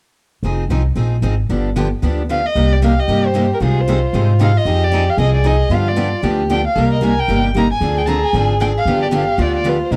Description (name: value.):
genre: acoustic string swing (jazz manouche).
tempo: 228 BPM.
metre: 4/4.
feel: swing 57% on 8ths.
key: C minor.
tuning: A4 = 440 Hz.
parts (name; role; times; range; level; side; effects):
picked steel-string acoustic guitar; accompaniment; 0.4-10.0 s; C3 to C5; -24 LUFS; equal; none.
picked steel-string acoustic guitar; accompaniment; 0.4-10.0 s; C3 to Ab4; -28 LUFS; equal; none.
upright bass; bass; 0.4-10.0 s; F1 to Ab2; -19 LUFS; equal; none.
dark violin; melody; 2.3-10.0 s; Ab4 to Bb5; -22 LUFS; equal; none.
mellow soprano saxophone; second line; 2.6-10.0 s; Eb4 to Bb4; -23 LUFS; equal; none.
room: small room ambience.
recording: dry, close 1970s-style studio recording.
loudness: -16 LUFS.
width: mono.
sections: 0.5-2.6 A section; 2.6-10.0 B section.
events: none.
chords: 0.5 Fm7; 1.5 G7; 2.6 Cm7; 3.6 Abmaj7/C; 4.7 Fm7; 5.7 G7; 6.8 Cm7; 7.8 Dm7b5; 8.9 G7.